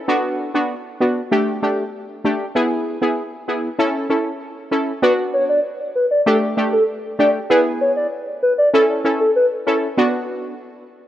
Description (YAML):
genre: dancehall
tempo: 97 BPM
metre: 4/4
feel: straight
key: B minor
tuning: A4 = 440 Hz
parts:
  - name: synth brass stab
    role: accompaniment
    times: 0.1-10.5 s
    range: A3 to A4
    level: -19 LUFS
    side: equal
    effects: chorus
  - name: hollow clarinet-like synth lead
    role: melody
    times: 5.0-9.8 s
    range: A4 to D5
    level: -17 LUFS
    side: equal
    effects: chorus, digital delay
room: moderate plate reverb, RT60 3.2 s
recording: worn, warbling old tape, cassette tape, warbly pitch drift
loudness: -16 LUFS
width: side -12 dB against mid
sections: 0.0-5.0 A section; 5.0-11.1 B section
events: none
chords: 0.1 Bm; 1.3 Gsus2; 2.6 E; 3.8 A; 5.0 Bm; 6.3 Gsus2; 7.5 E; 8.7 A; 10.0 Bm